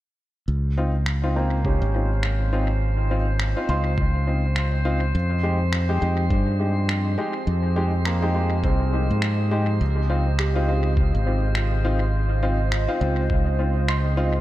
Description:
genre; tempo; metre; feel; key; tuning
ambient dub; 103 BPM; 4/4; swing 58% on 16ths; unclear; A4 = 440 Hz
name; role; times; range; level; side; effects
warbly tape-like pad; sustained chords; 2.8-14.4 s; Db3 to Eb5; -33 LUFS; right 2 dB; chorus, built-in reverb
modern bright fingered electric bass; bass; 0.5-14.4 s; Ab1 to Ab2; -21 LUFS; equal; none
drifting glass-harmonics texture; texture; 1.1-14.4 s; C5; -34 LUFS; right 1 dB; chorus, built-in reverb
warm upright piano; stabs; 0.8-14.3 s; Ab3 to G4; -28 LUFS; left 2 dB; dub echo
electronic finger snaps; drums; 1.1-14.0 s; none; -32 LUFS; equal; dub echo
felt-muted upright piano; arpeggios; 1.4-14.4 s; Bb3 to C6; -34 LUFS; right 3 dB; dub echo
electronic kick drum; drums; 1.6-13.4 s; none; -23 LUFS; equal; none
room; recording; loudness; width
light reverb, digital ambience; none; -20 LUFS; side -15 dB against mid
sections
0.5-14.4 A section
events
fade-in on ambient pad 0.5-14.4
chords
0.5 Dbmaj7; 5.1 Fm7; 9.8 Dbmaj7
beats
| 0.49 1.07 1.65 2.23 | 2.82 3.40 3.98 4.56 | 5.15 5.73 6.31 6.89 | 7.48 8.06 8.64 9.22 | 9.81 10.39 10.97 11.55 | 12.14 12.72 13.30 13.88

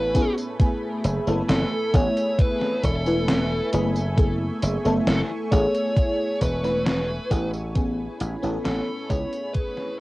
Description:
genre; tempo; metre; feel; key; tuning
vaporwave; 67 BPM; 4/4; straight; unclear; A4 = 442 Hz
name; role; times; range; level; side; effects
dark smooth lead guitar; melody; 0.0-10.0 s; A4 to C#5; -28 LUFS; equal; overdrive, tape echo
FM electric piano with soft pad layer; accompaniment; 0.0-9.9 s; A3 to B4; -26 LUFS; equal; phaser, analog chorus, cassette tape, tape echo
lush unison pad; sustained chords; 0.0-10.0 s; A3 to C#6; -36 LUFS; right 1 dB; chorus, phaser, cassette tape
dry thumbed slap bass; bass; 0.0-9.2 s; E1 to C#2; -26 LUFS; equal; none
electronic kick drum; drums; 0.1-9.7 s; none; -21 LUFS; equal; overdrive, cassette tape
gated 80s digital drum machine; drums; 0.1-9.9 s; hi-hat, snare drum, tambourine; -28 LUFS; equal; gated reverb, gated reverb snare, overdrive, cassette tape
room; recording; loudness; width
light reverb; home recording on cassette; -21 LUFS; side -20 dB against mid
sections
0.0-10.0 A section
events
fade-out 5.4-10.0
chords
0.0 Amaj9; 0.6 F#m11; 7.8 Amaj9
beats
| 0.59 1.49 2.38 3.28 | 4.18 5.07 5.97 6.86 | 7.76 8.65 9.55

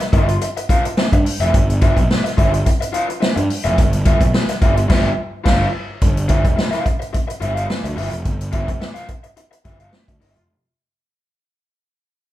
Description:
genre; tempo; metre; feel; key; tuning
funk; 107 BPM; 4/4; straight; G mixolydian; A4 = 440 Hz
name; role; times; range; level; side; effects
raw garage guitar; accompaniment; 0.0-10.4 s; F4 to F5; -22 LUFS; left 1 dB; overdrive
swinging big-band drum kit; drums; 0.0-10.5 s; crash cymbal, hi-hat, kick drum, snare drum; -18 LUFS; equal; none
fuzz picked electric bass; bass; 0.1-10.5 s; F1 to G2; -20 LUFS; equal; overdrive
room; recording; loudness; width
moderate large studio reverb, RT60 0.9 s; band playing live in one room; -15 LUFS; side -14 dB against mid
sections
0.0-6.0 A section; 6.0-10.5 B section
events
band accent 4.9-6.0; fade-out 6.0-10.5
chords
0.0 G6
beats
0.41 0.97 | 1.53 2.09 2.65 3.21 | 3.78 4.34 4.89 5.46 | 6.01 6.57 7.13 7.69 | 8.25 8.81 9.37 9.93

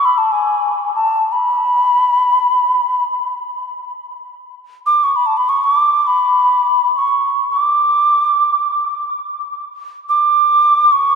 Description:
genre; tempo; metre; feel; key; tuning
world meditative, free-time meditation music; free time; none; none; B dorian; A4 = 441 Hz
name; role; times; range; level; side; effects
mellow alto ocarina; solo; 0.0-11.2 s; G#5 to D6; -13 LUFS; equal; diffuse ambient delay
room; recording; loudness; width
wet huge ambient reverb, RT60 5.0 s; dark, warm production; -12 LUFS; side -6 dB against mid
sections
0.0-11.2 A section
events
none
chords
none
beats
free time

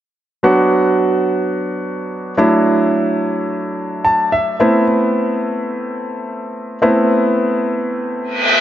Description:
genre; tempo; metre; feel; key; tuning
pop; free time; none; none; A dorian; A4 = 443 Hz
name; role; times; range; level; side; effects
clear grand piano; accompaniment; 0.4-8.6 s; F#3 to A5; -14 LUFS; equal; none
reverse cymbal; sound effects; 8.3-8.6 s; none; -12 LUFS; equal; none
room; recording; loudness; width
moderate lush hall reverb, RT60 2.5 s; nothing above 7.5 kHz; -14 LUFS; side -11 dB against mid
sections
0.4-8.6 A section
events
grand piano fill 3.8-4.9; reverse cymbal 8.3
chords
0.4 Bm; 2.4 Dadd9; 4.6 Amadd9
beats
free time

